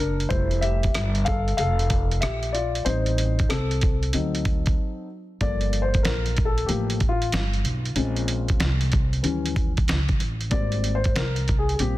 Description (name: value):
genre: hip hop, jazz-hop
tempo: 94 BPM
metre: 4/4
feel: swing 66% on 16ths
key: unclear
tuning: A4 = 440 Hz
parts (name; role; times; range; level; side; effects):
- dark concert grand piano; accompaniment; 0.0-12.0 s; Fb3 to F5; -27 LUFS; left 4 dB; none
- upright bass; bass; 0.0-12.0 s; F1 to Eb2; -25 LUFS; equal; none
- dusty soul sampler-style drum kit; drums; 0.2-12.0 s; hi-hat, kick drum, rim click, snare drum; -25 LUFS; equal; overdrive
room: little or no reverb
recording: dense, heavily limited modern master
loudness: -21 LUFS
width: side -16 dB against mid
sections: 0.0-5.4 A section; 5.4-12.0 B section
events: grand piano solo 0.0-5.4, 5.4-12.0; break 4.8-5.4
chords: 0.3 Fmaj9; 2.9 Am7b5; 4.1 D7b9; 5.4 Gm9; 8.0 Bbm9; 9.2 Eb7b9; 10.5 Abmaj9